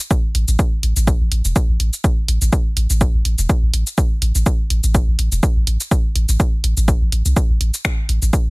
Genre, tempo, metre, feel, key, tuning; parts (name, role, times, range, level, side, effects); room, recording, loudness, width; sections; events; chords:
minimal techno; 124 BPM; 4/4; swing 55% on 16ths; A minor; A4 = 440 Hz
punchy analog drum machine; drums; 0.0-8.4 s; cabasa, finger snaps, hi-hat; -24 LUFS; equal; soft clipping on snare
electronic kick drum; drums; 0.1-8.4 s; -16 LUFS; equal
punchy sub bass; bass; 0.3-8.3 s; E1 to C2; -17 LUFS; equal; sidechain pumping
little or no reverb; dense, heavily limited modern master; -15 LUFS; side -29 dB against mid
0.0-8.5 A section